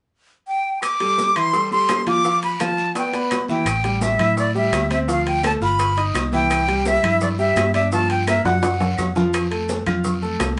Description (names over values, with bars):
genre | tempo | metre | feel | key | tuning
latin, salsa | 169 BPM | 4/4 | straight | A minor | A4 = 440 Hz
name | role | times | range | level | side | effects
breathy bright jazz flute | melody | 0.5-9.1 s | D5 to D6 | -22 LUFS | equal | none
bongos | percussion | 0.8-10.6 s | none | -32 LUFS | equal | none
claves | percussion | 0.8-10.6 s | none | -33 LUFS | equal | none
congas | percussion | 0.8-10.6 s | none | -30 LUFS | equal | none
guiro | percussion | 0.8-10.6 s | none | -39 LUFS | equal | none
maracas | percussion | 0.8-10.6 s | none | -41 LUFS | equal | none
timbales | percussion | 0.8-10.6 s | none | -31 LUFS | equal | none
clear concert grand piano | accompaniment | 1.0-10.5 s | E3 to F#6 | -26 LUFS | equal | none
fingered electric bass | bass | 3.7-10.6 s | G1 to A2 | -27 LUFS | equal | none
room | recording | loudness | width
moderate studio ambience, RT60 0.5 s | band playing live in one room, nothing above 10.6 kHz | -20 LUFS | mono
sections
0.8-3.7 A section; 3.7-10.6 B section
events
drum fill 7.9-9.3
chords
0.0 N.C.; 0.8 Am7; 2.2 G13; 3.7 Am7; 5.1 Dm; 5.8 Gaug7; 6.5 Cadd9; 7.9 Gm7; 8.6 F#5; 9.3 F